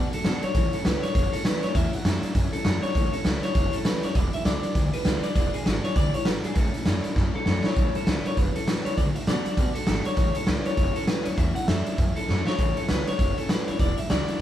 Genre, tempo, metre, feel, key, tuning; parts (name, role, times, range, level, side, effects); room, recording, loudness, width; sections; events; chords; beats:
rockabilly; 199 BPM; 4/4; swing 60% on 8ths; A major; A4 = 441 Hz
electric guitar through a small old amp; melody; 0.0-14.4 s; G#4 to F#5; -30 LUFS; left 2 dB
picked steel-string acoustic guitar; accompaniment; 0.0-14.4 s; E2 to F#4; -33 LUFS; left 3 dB
upright bass; bass; 0.0-14.3 s; E1 to B2; -29 LUFS; equal
raw garage drum kit; drums; 0.1-14.3 s; hi-hat, kick drum, snare drum; -24 LUFS; equal
little or no reverb; band playing live in one room; -22 LUFS; side -11 dB against mid
0.0-7.8 A section; 7.8-14.4 A section
drum fill 7.2-7.8, 12.3-12.6
0.0 D; 0.6 A; 4.2 E7; 6.6 A; 9.0 D; 10.2 A; 13.8 E7
0.25 | 0.55 0.85 1.15 1.45 | 1.75 2.05 2.35 2.66 | 2.96 3.26 3.56 3.86 | 4.16 4.46 4.76 5.06 | 5.36 5.66 5.96 6.26 | 6.56 6.87 7.17 7.47 | 7.77 8.07 8.37 8.67 | 8.97 9.27 9.57 9.88 | 10.18 10.48 10.78 11.08 | 11.38 11.68 11.98 12.28 | 12.59 12.89 13.19 13.49 | 13.79 14.09 14.40